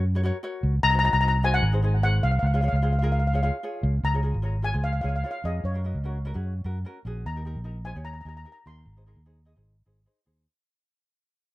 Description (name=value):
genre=calypso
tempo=149 BPM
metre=4/4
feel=straight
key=Db major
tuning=A4 = 440 Hz
part: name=ukulele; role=accompaniment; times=0.0-10.4 s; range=Db4 to Eb5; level=-36 LUFS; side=left 1 dB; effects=none
part: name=fingered electric bass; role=bass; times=0.0-10.5 s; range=Ab1 to Gb2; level=-24 LUFS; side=equal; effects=none
part: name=steel pan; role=melody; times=0.8-10.0 s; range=Db5 to C6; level=-27 LUFS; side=left 2 dB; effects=analog delay
room=light reverb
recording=rough home demo mix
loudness=-23 LUFS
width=side -18 dB against mid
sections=0.0-4.0 A section; 4.0-10.5 B section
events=fade-out 4.0-10.5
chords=0.0 Gb; 0.8 Cdim; 1.6 Ab7; 2.4 Db; 5.6 Gb; 7.2 Eb; 8.9 Ab